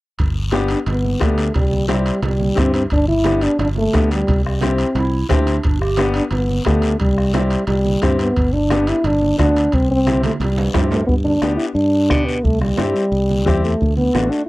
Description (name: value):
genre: latin, cumbia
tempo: 176 BPM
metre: 4/4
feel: straight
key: G major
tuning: A4 = 440 Hz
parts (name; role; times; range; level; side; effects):
- modern bright fingered electric bass; bass; 0.2-14.3 s; G1 to B2; -20 LUFS; equal; none
- bombo; percussion; 0.2-14.3 s; none; -21 LUFS; equal; none
- congas; percussion; 0.2-14.3 s; none; -27 LUFS; right 5 dB; none
- guiro; percussion; 0.2-14.5 s; none; -34 LUFS; left 5 dB; none
- timbales; percussion; 0.2-11.0 s; none; -31 LUFS; right 3 dB; none
- bright upright piano; accompaniment; 0.5-14.4 s; A3 to G4; -22 LUFS; left 4 dB; none
- dark French horn; melody; 0.7-14.5 s; G3 to E4; -18 LUFS; equal; none
- breathy clarinet; second line; 5.0-6.1 s; D4 to G4; -22 LUFS; right 3 dB; none
room: little or no reverb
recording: dry, close 1970s-style studio recording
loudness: -15 LUFS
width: side -19 dB against mid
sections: 0.2-11.1 A section; 11.1-14.5 B section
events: drum fill 10.1-11.1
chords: 0.2 G; 1.6 C; 2.9 G; 4.3 C; 5.6 G; 7.0 C; 8.4 G; 9.7 C; 11.1 G; 12.4 C; 13.8 D